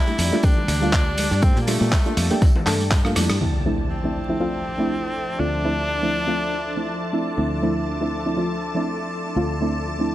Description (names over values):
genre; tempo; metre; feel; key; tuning
deep house; 121 BPM; 4/4; swing 55% on 16ths; D minor; A4 = 441 Hz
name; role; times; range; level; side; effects
bright tenor saxophone; melody; 0.0-7.1 s; A3 to E4; -27 LUFS; equal; analog delay
deep mellow chord stab; stabs; 0.0-10.1 s; F3 to A4; -25 LUFS; equal; chorus, cassette tape, sidechain pumping, analog delay
ethereal airy pad; texture; 0.0-10.1 s; D4 to A5; -32 LUFS; equal; ensemble chorus, built-in reverb, sidechain pumping
gated 80s drum kit; drums; 0.1-3.4 s; hi-hat, snare drum, tambourine; -36 LUFS; right 1 dB; none
tambourine; percussion; 0.1-3.4 s; none; -34 LUFS; right 2 dB; none
fingered electric bass; bass; 0.2-10.1 s; D2 to Bb2; -25 LUFS; equal; sidechain pumping, low-pass filter
dusty soul sampler-style drum kit; drums; 0.2-3.4 s; handclaps, hi-hat, rim click; -27 LUFS; right 1 dB; none
congas; percussion; 0.3-3.3 s; none; -31 LUFS; left 2 dB; none
electronic kick drum; drums; 0.4-3.0 s; none; -18 LUFS; equal; none
warm analog pad; sustained chords; 3.4-10.1 s; F3 to D6; -32 LUFS; left 1 dB; chorus, vintage 12-bit sampler grit, sidechain pumping
impact; sound effects; 3.4-5.4 s; none; -28 LUFS; equal; none
string machine, violins; texture; 3.4-10.1 s; A5; -35 LUFS; equal; ensemble chorus
room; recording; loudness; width
light reverb, small room ambience; vinyl crackle; -19 LUFS; side -14 dB against mid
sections
0.0-3.4 A section; 3.4-10.1 B section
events
filter sweep on synth stab 0.0-3.4; drum fill 3.0-3.4; band accent 3.3; impact 3.4-5.4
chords
0.0 Gm9; 3.4 Dm9